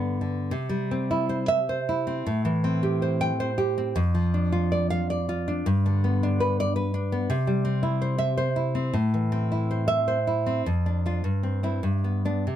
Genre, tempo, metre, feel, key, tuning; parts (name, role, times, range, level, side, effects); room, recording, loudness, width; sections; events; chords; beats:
romantic piece for solo classical guitar; 89-111 BPM; 3/4; rubato; C major; A4 = 440 Hz
nylon-string guitar; solo; 0.0-12.6 s; F2 to G5; -23 LUFS; equal
light reverb; -23 LUFS; side -11 dB against mid
0.5-12.6 A section
0.0 G; 0.5 C; 2.3 Am7; 4.0 Dm/F; 5.7 G; 7.3 C; 8.9 Am; 10.7 Dm/F; 11.2 C/G; 11.8 G
| 0.52 1.11 1.68 | 2.26 2.83 3.40 | 3.96 4.53 5.09 | 5.66 6.21 6.75 | 7.30 7.84 8.38 | 8.95 9.51 10.07 | 10.65 11.22 11.82 | 12.46